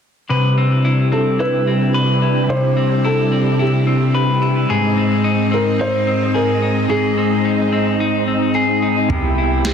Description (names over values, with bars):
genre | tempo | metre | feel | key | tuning
dream pop | 109 BPM | 4/4 | straight | unclear | A4 = 442 Hz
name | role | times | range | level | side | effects
string machine, violas | sustained chords | 0.3-9.7 s | Ab2 to B5 | -18 LUFS | right 1 dB | ensemble chorus
clean electric guitar | arpeggios | 0.3-9.7 s | Ab2 to B4 | -17 LUFS | left 2 dB | wide subtle chorus, ping-pong delay
felt-muted upright piano | melody | 1.1-9.7 s | G4 to C5 | -22 LUFS | right 2 dB | ping-pong delay
mellow electric guitar | accompaniment | 9.1-9.7 s | C3 to G4 | -21 LUFS | right 3 dB | tremolo, lush chorus
round analog bass | bass | 9.1-9.7 s | C2 | -20 LUFS | right 1 dB | none
soft vintage rhythm box | drums | 9.1-9.7 s | kick drum, snare drum, toms | -21 LUFS | right 1 dB | none
room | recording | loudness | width
wet concert hall reverb, RT60 1.9 s, digital ambience | dense, heavily limited modern master | -14 LUFS | side -7 dB against mid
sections
0.3-9.1 A section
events
none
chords
0.3 Cmaj7; 4.7 Ab; 9.1 Cmaj7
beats
| 0.29 0.84 1.39 1.94 | 2.49 3.04 3.60 4.14 | 4.70 5.25 5.80 6.35 | 6.90 7.45 8.00 8.55 | 9.10 9.65